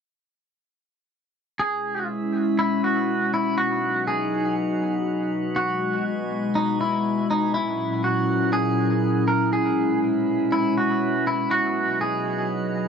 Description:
hip hop; 121 BPM; 4/4; half-time; C# dorian; A4 = 438 Hz
clean electric guitar; melody; 1.6-12.5 s; D#4 to A#4; -24 LUFS; right 1 dB; harmonic tremolo, tape echo
warbly tape-like pad; sustained chords; 1.6-12.9 s; A#2 to D#5; -23 LUFS; left 1 dB; chorus, built-in reverb
drifting glass-harmonics texture; texture; 2.0-12.9 s; C#4 to G#5; -34 LUFS; right 3 dB; chorus, built-in reverb
moderate booth ambience, RT60 0.3 s; dark, warm production; -21 LUFS; side -6 dB against mid
1.6-12.9 A section
1.6 C#m7; 3.6 B; 5.6 G#m7; 7.5 F#7; 9.5 C#m7; 11.5 B
| 1.60 2.09 2.59 3.08 | 3.58 4.08 4.57 5.07 | 5.56 6.06 6.56 7.05 | 7.55 8.04 8.54 9.04 | 9.53 10.03 10.52 11.02 | 11.51 12.01 12.51

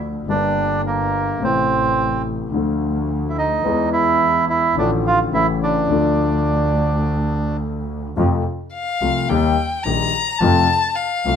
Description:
tango; 107 BPM; 4/4; rubato; D minor, F major from 8.2 s; A4 = 443 Hz
warm concert grand piano; accompaniment; 0.0-11.4 s; G1 to G#4; -21 LUFS; left 4 dB
clear double bass; bass; 0.0-11.4 s; G1 to F2; -24 LUFS; right 2 dB
bandoneon; melody; 0.3-7.6 s; Bb3 to F4; -19 LUFS; right 4 dB
warm violin; second line; 8.7-11.4 s; F5 to Bb5; -19 LUFS; left 5 dB
moderate large studio reverb, RT60 0.9 s; minimal, uncompressed stereo recording; -16 LUFS; side -8 dB against mid
0.0-8.2 A section; 8.2-11.4 B section
violin solo 8.2-11.4
0.3 Gm; 1.4 Am; 2.5 Dm; 3.6 E; 4.8 Dm/A; 5.3 A; 5.9 Dm; 8.2 F; 9.3 Eb; 10.4 F
0.29 0.85 | 1.41 1.97 2.53 3.09 | 3.65 4.21 4.77 5.33 | 5.90 6.46 7.03 7.60 | 8.17 8.73 9.29 9.85 | 10.41 10.97

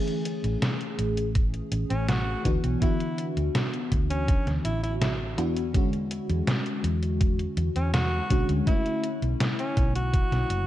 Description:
vaporwave; 82 BPM; 4/4; straight; A major; A4 = 439 Hz
FM electric piano with soft pad layer; accompaniment; 0.0-10.7 s; D3 to G#4; -30 LUFS; left 1 dB; tremolo, lush chorus, analog delay
detuned 8-bit digital drum machine; drums; 0.1-10.6 s; hi-hat, snare drum; -30 LUFS; equal; small room ambience, gated reverb
hollow-body short-scale fingered electric bass; bass; 0.4-10.7 s; F#1 to E2; -28 LUFS; equal
electronic kick drum; drums; 1.4-10.3 s; -24 LUFS; equal; small room ambience
clear alto saxophone; melody; 1.9-10.7 s; C#4 to F#4; -33 LUFS; equal; vintage 12-bit sampler grit, tape echo
light reverb; cassette tape; -24 LUFS; side -13 dB against mid
0.0-10.7 A section
0.0 Amaj7; 2.5 D69; 5.7 E13; 8.7 Bm11
0.62 1.35 2.08 | 2.82 3.55 4.28 5.01 | 5.74 6.47 7.21 7.94 | 8.67 9.40 10.13

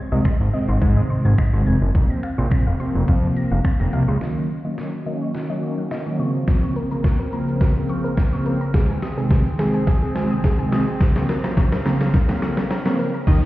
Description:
dance-pop; 106 BPM; 4/4; straight; Bb minor; A4 = 440 Hz
soft round pluck; arpeggios; 0.0-13.2 s; Ab4 to Bb6; -33 LUFS; left 1 dB; chorus, sidechain pumping, low-pass filter, digital delay
big bright polysynth; accompaniment; 0.1-13.5 s; C3 to Eb4; -23 LUFS; right 1 dB; chorus, sidechain pumping, low-pass filter
fat analog bass; bass; 0.1-4.2, 13.3-13.4 s; F1 to Ab2; -18 LUFS; equal; sidechain pumping
pop drum kit; drums; 0.2-13.5 s; crash cymbal, finger snaps, hi-hat, kick drum, shaker, snare drum; -19 LUFS; equal; overdrive
sweeping resonant pad; sustained chords; 4.2-13.5 s; Db3 to Eb5; -28 LUFS; left 1 dB; chorus, sidechain pumping, low-pass filter
wide unison pluck; melody; 13.3-13.5 s; Eb4 to Eb5; -26 LUFS; right 1 dB
downlifter; sound effects; 13.3-13.5 s; -38 LUFS; left 1 dB
light reverb, digital ambience; heard muffled through a wall, stone room reverb, EQ; -18 LUFS; side -16 dB against mid
0.0-4.2 A section; 4.2-13.3 B section
build-up 4.2-13.3; drum fill 4.2-13.3; filter sweep 4.2-13.3
0.0 Ab; 1.9 Fsus4; 4.2 Ebm7; 6.2 Bbmadd9; 8.7 Ab; 11.0 Bbmadd9
0.25 0.82 1.38 | 1.95 2.52 3.08 3.65 | 4.21 4.78 5.35 5.91 | 6.48 7.04 7.61 8.18 | 8.74 9.31 9.87 10.44 | 11.01 11.57 12.14 12.71 | 13.27

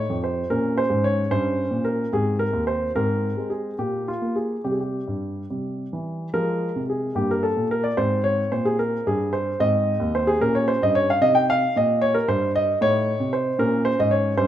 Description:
classical, baroque-style suite movement for grand piano; 74 BPM (dotted quarters); 6/8; rubato; A4 = 438 Hz
warm baby grand piano; solo; 0.0-14.5 s; Eb2 to G5; -20 LUFS; equal
moderate recital hall reverb, RT60 1.4 s; close, detailed microphones; -20 LUFS; side -11 dB against mid
0.0-6.4 A section; 6.4-14.5 A section
0.0 F7(no3); 0.5 Bbm; 1.3 Bbm69/G; 2.1 Ab; 3.8 N.C.; 4.6 C5; 5.5 C; 6.4 Fm; 7.2 Gmadd9; 8.0 Bbm13; 9.6 Ab; 10.4 Gdim/Bb; 12.8 Adim; 13.6 Bbm
0.51 | 1.32 2.12 | 2.94 3.77 | 4.63 5.50 | 6.36 7.18 | 7.99 8.80 | 9.61 10.42 | 11.21 12.01 | 12.80 13.59 | 14.38

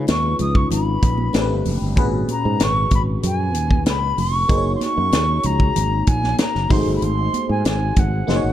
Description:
polished 1980s jazz-funk pop; 95 BPM; 4/4; straight; A4 = 440 Hz
FM electric piano; accompaniment; 0.0-8.5 s; A#2 to C#5; -24 LUFS; left 2 dB; phaser, analog chorus
sustaining fretless electric bass; bass; 0.0-8.5 s; E#1 to G#2; -21 LUFS; equal; wide subtle chorus
concert flute; melody; 0.1-8.5 s; F#5 to D#6; -23 LUFS; equal
tight funk drum kit; drums; 0.1-8.4 s; hi-hat, kick drum, snare drum; -20 LUFS; equal
congas; percussion; 0.1-8.4 s; -31 LUFS; right 6 dB
light reverb, studio reverb; dark, warm production; -16 LUFS; side -12 dB against mid
0.0-8.5 A section
drum fill 8.3
0.0 C#9; 1.3 Am11; 2.0 G#m11; 4.5 F#69; 6.7 G#7b9
0.08 0.71 1.34 | 1.97 2.60 3.23 3.86 | 4.50 5.13 5.76 6.39 | 7.02 7.65 8.28

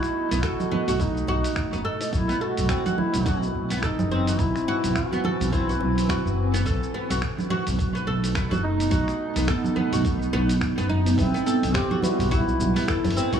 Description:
organic downtempo; 106 BPM; 4/4; swing 58% on 16ths; A4 = 441 Hz
mellow duduk; melody; 0.0-13.2 s; B3 to G4; -28 LUFS; right 1 dB; analog delay
granular cloud pad; sustained chords; 0.0-13.4 s; B2 to D#5; -30 LUFS; right 1 dB; built-in reverb, sidechain pumping
oud; arpeggios; 0.0-13.4 s; B3 to A4; -30 LUFS; equal; analog delay
dusty soul sampler-style drum kit; drums; 0.0-13.4 s; congas, finger snaps, hi-hat, shaker; -34 LUFS; right 1 dB; studio reverb
upright bass; bass; 0.3-13.1 s; F#1 to B1; -26 LUFS; equal; sidechain pumping
electronic kick drum; drums; 0.4-13.0 s; -29 LUFS; equal; studio reverb
congas and bongos; percussion; 0.6-13.1 s; -32 LUFS; right 4 dB
deep mellow chord stab; accompaniment; 11.2-13.4 s; G3 to B4; -31 LUFS; right 3 dB; chorus, phaser, sidechain pumping, analog delay
moderate echo chamber reverb, RT60 2.0 s; echo-heavy mix, small room ambience; -21 LUFS; side -8 dB against mid
0.0-11.2 A section; 11.2-13.4 B section
0.0 B7; 2.1 Cmaj7; 6.7 B7; 11.2 Cmaj7
0.43 1.00 1.56 | 2.13 2.69 3.26 3.83 | 4.39 4.96 5.52 6.09 | 6.66 7.22 7.79 8.35 | 8.92 9.49 10.05 10.62 | 11.18 11.75 12.32 12.88

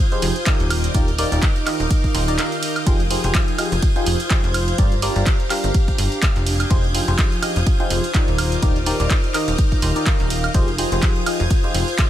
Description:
piano house; 125 BPM; 4/4; swing 56% on 16ths; F dorian; A4 = 438 Hz
string machine, violins; sustained chords; 0.0-12.1 s; G4 to Ab6; -28 LUFS; equal; ensemble chorus, sidechain pumping
airy breathy pad; texture; 0.0-12.1 s; D4 to F5; -28 LUFS; right 1 dB; chorus, sidechain pumping
barking FM electric piano; riff; 0.1-12.1 s; Eb3 to F5; -24 LUFS; left 1 dB; phaser, sidechain pumping, dub echo
punchy analog drum machine; drums; 0.1-12.1 s; handclaps, hi-hat, ride cymbal, woodblock; -25 LUFS; right 2 dB
plucky analog bass; bass; 0.2-11.8 s; Eb1 to G1; -22 LUFS; equal; sidechain pumping
electronic kick drum; drums; 0.5-12.1 s; -18 LUFS; equal
light reverb, digital ambience; -16 LUFS; side -12 dB against mid
0.0-12.1 A section
break 2.4-2.9
0.0 Fm9; 0.7 Ebmaj9; 2.9 Fm9; 4.8 Gm7; 6.5 Fm9; 8.4 Ebmaj9; 10.5 Fm9
0.47 | 0.94 1.43 1.91 2.38 | 2.87 3.35 3.83 4.30 | 4.79 5.26 5.75 6.22 | 6.71 7.18 7.67 8.14 | 8.62 9.11 9.59 10.06 | 10.54 11.03 11.51 11.98

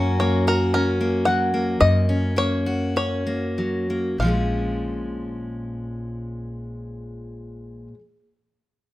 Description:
folk; 93-116 BPM; 4/4; straight; Bb minor; A4 = 440 Hz
bluegrass banjo; melody; 0.0-7.9 s; Bb4 to Gb5; -24 LUFS; left 1 dB
fingerpicked steel-string acoustic guitar; accompaniment; 0.0-8.0 s; Gb2 to Ab4; -24 LUFS; left 1 dB
upright bass; bass; 0.0-7.9 s; Bb1 to Gb2; -26 LUFS; equal
light reverb; -20 LUFS; side -16 dB against mid
0.0-4.2 A section; 4.2-8.9 B section
slowing down 0.0-4.2
0.0 Gb; 4.2 Bbm7
0.20 0.72 1.26 | 1.80 2.37 2.95 3.56 | 4.19 4.84 5.48 6.13 | 6.78 7.42

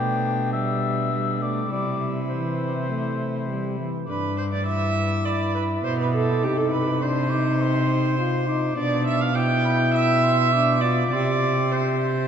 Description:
classical, renaissance-style consort dance; 102 BPM; 4/4; straight; G mixolydian; A4 = 440 Hz
warm oboe; melody; 0.0-12.3 s; C5 to D6; -30 LUFS; left 6 dB
rich viola; second line; 0.0-12.3 s; D4 to G5; -26 LUFS; right 4 dB
mellow trombone; accompaniment; 0.0-12.3 s; E3 to G4; -27 LUFS; left 2 dB
rich cello; bass; 0.0-12.3 s; G2 to C3; -25 LUFS; right 1 dB
wet cathedral reverb, RT60 4.7 s; dark, warm production, nothing above 7.8 kHz; -20 LUFS; side -8 dB against mid
0.0-4.1 A section; 4.1-12.3 A section
0.0 G/B; 1.7 C; 4.1 G; 6.4 Cm; 8.8 G/B; 11.1 C5
0.53 1.12 | 1.71 2.30 2.89 3.49 | 4.08 4.67 5.26 5.84 | 6.43 7.01 7.60 8.18 | 8.77 9.35 9.94 10.53 | 11.12 11.72

